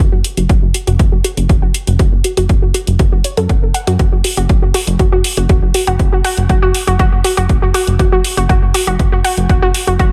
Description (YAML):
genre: melodic techno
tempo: 120 BPM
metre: 4/4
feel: straight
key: unclear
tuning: A4 = 440 Hz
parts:
  - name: warbly dusty pluck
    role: arpeggios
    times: 0.0-10.0 s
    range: F#4 to F#5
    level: -20 LUFS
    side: equal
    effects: chorus, sidechain pumping, digital delay
  - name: plucky analog bass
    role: bass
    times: 0.0-10.1 s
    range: E1 to F#2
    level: -18 LUFS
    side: equal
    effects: tube saturation, sidechain pumping
  - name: electronic hi-hat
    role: drums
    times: 0.2-10.1 s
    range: none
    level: -22 LUFS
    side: equal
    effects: studio reverb
  - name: electronic kick drum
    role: drums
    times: 0.5-10.1 s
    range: none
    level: -15 LUFS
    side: equal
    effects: studio reverb
room: little or no reverb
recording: none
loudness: -13 LUFS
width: mono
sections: 0.0-10.1 A section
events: filter sweep on synth arpeggio sound 0.0-10.1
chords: none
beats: 0.49 0.99 1.50 | 2.00 2.50 3.00 3.50 | 4.00 4.50 5.00 5.50 | 6.00 6.50 7.00 7.50 | 8.00 8.49 8.99 9.49 | 9.99